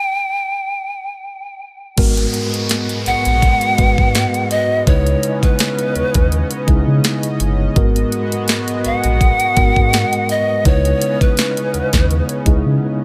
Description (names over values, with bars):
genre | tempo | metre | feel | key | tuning
contemporary R&B | 83 BPM | 4/4 | swing 54% on 16ths | G# minor | A4 = 440 Hz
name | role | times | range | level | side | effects
pan flute | melody | 0.0-12.7 s | B4 to G5 | -21 LUFS | equal | delay
mellow tine electric piano | accompaniment | 2.0-13.0 s | G#2 to B4 | -22 LUFS | equal | none
chorused pulse-width pad | sustained chords | 2.0-13.0 s | C#3 to D#5 | -28 LUFS | equal | none
sub bass with octave | bass | 2.0-12.8 s | G1 to C#3 | -20 LUFS | equal | none
trap drum kit | drums | 2.0-12.6 s | crash cymbal, hi-hat, kick drum, snare drum | -18 LUFS | equal | none
downlifter | sound effects | 2.0-7.8 s | none | -31 LUFS | equal | none
room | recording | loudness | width
little or no reverb | none | -16 LUFS | mono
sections
0.0-2.0 A section; 2.0-13.0 B section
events
stop 0.0-2.0; break 12.8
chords
0.0 N.C.; 2.0 G#m7; 4.9 C#m9; 7.8 G#m7; 10.7 C#m9